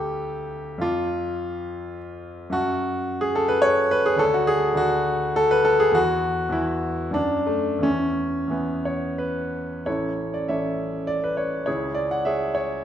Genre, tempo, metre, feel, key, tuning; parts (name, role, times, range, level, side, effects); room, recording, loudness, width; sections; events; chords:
classical, romantic character piece for solo piano; 85-110 BPM; 3/4; rubato; A major; A4 = 440 Hz
clear grand piano; solo; 0.0-12.8 s; A1 to D6; -21 LUFS; equal
moderate recital hall reverb, RT60 1.4 s; nothing above 10.8 kHz; -21 LUFS; side -10 dB against mid
0.0-9.9 A section; 9.9-12.8 B section
0.0 Dm7; 0.8 Dm/F; 2.5 F#m7; 4.2 Dmaj7; 6.0 E; 7.2 D/F#; 7.8 E; 9.9 A; 11.7 C#m